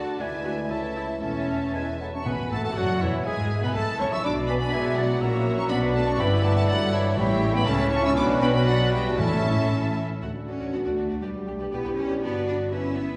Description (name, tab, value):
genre	quick classical-period movement for symphony orchestra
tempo	114-125 BPM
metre	2/4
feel	rubato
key	A major, D major from 6.2 s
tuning	A4 = 440 Hz
part	rich studio violin section	melody	0.0-13.2 s	G4 to E6	-36 LUFS	equal	none
part	mellow clarinet	second line	0.0-13.2 s	D4 to E5	-36 LUFS	equal	none
part	warm cor anglais	second line	0.0-10.0 s	E4 to A5	-37 LUFS	equal	none
part	warm studio violin section	second line	0.0-13.2 s	D4 to E5	-38 LUFS	equal	none
part	rich studio viola section	accompaniment	0.0-13.2 s	D3 to G4	-35 LUFS	equal	none
part	warm bassoon	accompaniment	0.0-10.0 s	D3 to F#4	-35 LUFS	equal	none
part	mellow French horn section	sustained chords	0.0-13.2 s	E3 to B4	-32 LUFS	equal	none
part	rich studio cello section	bass	0.0-13.2 s	C#2 to D4	-32 LUFS	equal	none
part	rich studio double bass section	bass	0.0-13.2 s	E1 to B2	-33 LUFS	equal	none
part	silver concert flute	second line	2.0-10.0 s	C#5 to C#6	-36 LUFS	equal	none
part	timpani	percussion	2.3-3.0, 7.2-9.9 s	A2	-34 LUFS	equal	none
room	wet recital hall reverb, RT60 1.5 s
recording	recorded in a church or concert hall, nothing above 10.4 kHz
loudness	-25 LUFS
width	mono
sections	0.0-2.3 A section; 2.3-10.2 B section; 10.2-13.2 C section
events	none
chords	0.2 E7/D; 0.7 A/C#; 1.2 A/E; 1.7 E; 2.3 A5; 3.3 E/G#; 3.8 A; 4.2 Bm; 5.2 F#7/A#; 5.7 Bm; 6.2 Em7/G; 7.2 A7; 8.2 Bm; 9.2 A; 10.2 D; 11.2 G/B; 12.2 Gmaj7